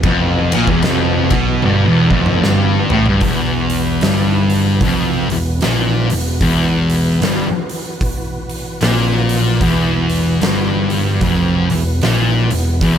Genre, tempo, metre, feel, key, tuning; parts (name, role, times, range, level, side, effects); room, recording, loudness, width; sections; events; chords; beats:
stoner and doom metal; 75 BPM; 4/4; swing 60% on 8ths; E minor; A4 = 440 Hz
tonewheel organ; sustained chords; 0.0-13.0 s; E3 to B4; -28 LUFS; right 1 dB; slow rotary speaker, overdrive, chorus vibrato
cranked stack guitar; riff; 0.0-3.2 s; E2 to B2; -20 LUFS; equal; overdrive
thick fuzz guitar; riff; 0.0-13.0 s; E2 to B2; -17 LUFS; left 7 dB; distortion
thick fuzz guitar; riff; 0.0-13.0 s; E2 to B2; -18 LUFS; right 7 dB; distortion
picked electric bass; bass; 0.0-13.0 s; E1 to B1; -21 LUFS; equal; overdrive
oversized low-tuned drum kit; drums; 0.0-13.0 s; hi-hat, kick drum, ride cymbal, snare drum, toms; -20 LUFS; right 1 dB
studio reverb; -13 LUFS; side -9 dB against mid
0.0-3.2 A section; 3.2-13.0 B section
drum fill 1.6-3.2
0.0 Em
| 0.05 0.84 1.64 2.43 | 3.23 4.03 4.82 5.62 | 6.42 7.22 8.02 8.82 | 9.62 10.42 11.22 12.02 | 12.82